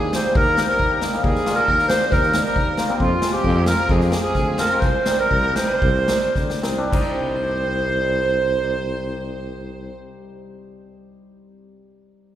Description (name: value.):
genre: klezmer.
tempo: 103-136 BPM.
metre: 4/4.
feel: straight.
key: C minor.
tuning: A4 = 440 Hz.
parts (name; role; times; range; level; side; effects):
mellow clarinet; melody; 0.0-9.9 s; F4 to C5; -21 LUFS; right 2 dB; none.
clear violin; second line; 0.0-9.9 s; F4 to C5; -28 LUFS; right 1 dB; none.
cimbalom; accompaniment; 0.0-11.7 s; G3 to G4; -27 LUFS; left 1 dB; none.
mellow tuba; bass; 0.0-9.9 s; C2 to F2; -25 LUFS; left 1 dB; none.
street-band drum kit; drums; 0.1-7.1 s; crash cymbal, kick drum, snare drum; -23 LUFS; equal; none.
room: wet church reverb, RT60 3.6 s.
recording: recorded in a church or concert hall.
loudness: -17 LUFS.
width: side -11 dB against mid.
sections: 0.0-6.9 A section; 6.9-11.6 B section.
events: slowing down 3.0-6.9.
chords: 0.0 Eb; 3.0 Fm; 4.8 Cm.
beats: 0.36 0.80 | 1.24 1.68 2.12 2.56 | 3.00 3.44 3.89 4.35 | 4.82 5.31 5.82 6.36 | 6.92 7.51 8.09 8.68 | 9.26 9.84 10.42 11.00.